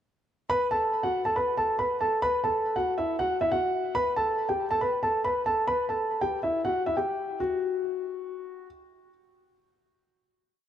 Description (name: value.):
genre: hip hop.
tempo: 139 BPM.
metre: 4/4.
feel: half-time.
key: unclear.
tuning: A4 = 440 Hz.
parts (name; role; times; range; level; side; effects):
dark grand piano; solo; 0.5-8.7 s; E4 to B5; -25 LUFS; equal; digital delay.
room: moderate lush hall reverb, RT60 2.9 s.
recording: dark, warm production.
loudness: -25 LUFS.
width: side -10 dB against mid.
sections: 0.5-7.4 hook; 7.4-10.7 final note.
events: none.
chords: 0.5 B5; 2.2 F#m; 3.9 Asus2; 5.7 G6; 7.4 N.C..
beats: | 0.49 0.93 1.36 1.79 | 2.22 2.65 3.08 3.52 | 3.95 4.38 4.81 5.24 | 5.67 6.11 6.54 6.97 | 7.40 7.83 8.27.